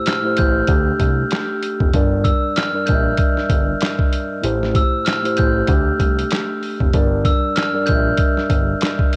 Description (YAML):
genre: hip hop, boom-bap hip-hop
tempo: 96 BPM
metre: 4/4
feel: swing 58% on 16ths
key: G dorian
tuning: A4 = 440 Hz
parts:
  - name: glockenspiel with brass mallets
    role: melody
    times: 0.0-9.2 s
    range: E6 to G6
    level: -25 LUFS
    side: equal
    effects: high-pass filter, low-pass filter, cassette tape
  - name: mellow tine electric piano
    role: accompaniment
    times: 0.0-9.2 s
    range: G2 to E5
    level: -24 LUFS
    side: equal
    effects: cassette tape, high-pass filter, low-pass filter
  - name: boom bap sampler-style drum kit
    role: drums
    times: 0.1-9.2 s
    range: handclaps, hi-hat, kick drum, snare drum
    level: -21 LUFS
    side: equal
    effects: cassette tape
  - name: fat analog bass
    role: bass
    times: 0.4-8.7 s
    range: F1 to D2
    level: -24 LUFS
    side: equal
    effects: none
room: light reverb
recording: home recording on cassette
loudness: -18 LUFS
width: mono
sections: 0.0-9.2 A section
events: none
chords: 0.0 Am7; 0.7 Dsus4; 1.9 Gm; 4.4 Am7; 5.7 Dsus4; 6.9 Gm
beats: 0.06 0.69 1.31 | 1.94 2.56 3.19 3.81 | 4.44 5.06 5.69 6.31 | 6.94 7.56 8.19 8.81